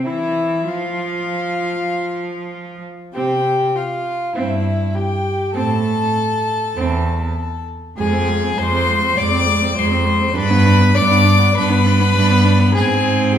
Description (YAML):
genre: quick classical-period movement for string quartet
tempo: 100 BPM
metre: 4/4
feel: rubato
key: unclear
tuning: A4 = 440 Hz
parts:
  - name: rich violin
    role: melody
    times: 0.0-13.4 s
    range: E5 to D6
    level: -21 LUFS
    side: left 6 dB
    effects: none
  - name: dark violin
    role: second line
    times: 0.0-13.4 s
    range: E4 to D5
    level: -22 LUFS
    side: left 1 dB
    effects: none
  - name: warm viola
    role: accompaniment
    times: 0.0-13.4 s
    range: Ab3 to F4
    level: -22 LUFS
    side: right 2 dB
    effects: none
  - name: rich cello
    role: bass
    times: 0.0-13.4 s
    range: E2 to F3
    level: -18 LUFS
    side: right 2 dB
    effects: none
room: wet recital hall reverb, RT60 1.4 s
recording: heard from further back in the room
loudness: -14 LUFS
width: side -9 dB against mid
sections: 0.0-13.4 A section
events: none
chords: 0.0 N.C.; 3.1 C; 5.6 Am; 8.0 Fm; 10.4 G; 12.8 Fm/Ab (rootless)